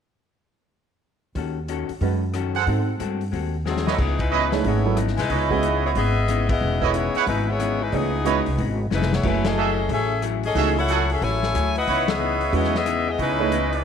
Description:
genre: jazz, big band swing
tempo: 183 BPM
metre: 4/4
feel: swing 63% on 8ths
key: C# minor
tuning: A4 = 442 Hz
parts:
  - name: vintage hollow-body jazz guitar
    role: accompaniment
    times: 1.4-13.7 s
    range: C#3 to A4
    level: -30 LUFS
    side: left 12 dB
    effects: none
  - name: upright bass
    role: bass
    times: 1.4-13.8 s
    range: E1 to G#2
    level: -25 LUFS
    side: equal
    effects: none
  - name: vintage drum kit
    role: drums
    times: 1.4-13.8 s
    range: crash cymbal, hi-hat, kick drum, ride cymbal, rim click, snare drum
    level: -29 LUFS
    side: left 3 dB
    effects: none
  - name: dark grand piano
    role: accompaniment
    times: 2.0-13.5 s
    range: E3 to D#5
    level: -27 LUFS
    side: right 12 dB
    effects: none
  - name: bright trumpet section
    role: stabs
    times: 2.6-13.8 s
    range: C#4 to F#5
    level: -26 LUFS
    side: right 11 dB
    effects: none
  - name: bright saxophone section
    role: melody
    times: 3.7-13.8 s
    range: E3 to G#5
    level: -24 LUFS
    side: left 4 dB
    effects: none
room: light reverb, small room reverb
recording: 1960s-style stereo with parts hard left and right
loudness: -20 LUFS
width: side -7 dB against mid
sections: 1.4-4.0 A section; 4.0-13.8 B section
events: drum fill 3.7-4.0, 8.9-9.2; band accent 4.2, 6.5, 9.4, 12.0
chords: 1.4 D#m7b5; 2.7 G#7b9; 4.0 C#m9; 9.2 F#m9; 11.9 C#m9

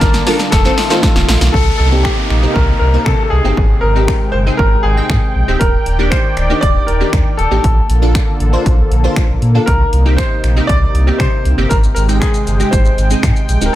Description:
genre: dance-pop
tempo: 118 BPM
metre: 4/4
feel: straight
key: unclear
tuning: A4 = 440 Hz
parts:
  - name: clear baby grand piano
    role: melody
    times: 0.0-13.7 s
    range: G4 to D5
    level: -19 LUFS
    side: left 1 dB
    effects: lush chorus, analog delay
  - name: wavetable chord stab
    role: accompaniment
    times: 0.0-13.7 s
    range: Ab3 to G5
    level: -20 LUFS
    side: right 1 dB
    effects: ensemble chorus, sidechain pumping
  - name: warm analog pad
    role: sustained chords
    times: 0.0-13.8 s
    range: C3 to A5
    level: -21 LUFS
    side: equal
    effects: chorus, sidechain pumping
  - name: sub bass with octave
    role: bass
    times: 0.0-13.7 s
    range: D1 to C3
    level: -14 LUFS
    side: equal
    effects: sidechain pumping
  - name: punchy analog drum machine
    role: drums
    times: 0.0-13.7 s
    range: finger snaps, hi-hat, kick drum, shaker, snare drum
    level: -15 LUFS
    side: equal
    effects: none
  - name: downlifter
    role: sound effects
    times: 1.5-5.6 s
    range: none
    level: -25 LUFS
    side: equal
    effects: none
room: light reverb, digital ambience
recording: none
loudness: -10 LUFS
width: side -14 dB against mid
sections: 0.0-1.5 A section; 1.5-13.8 B section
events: drum fill 0.0-1.5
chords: 0.0 Bbmaj7; 0.5 F7; 1.5 Cm7; 3.6 Abmaj7; 5.6 Ebmaj7; 7.6 Bbmaj7; 9.7 Cm7; 11.7 Abmaj7

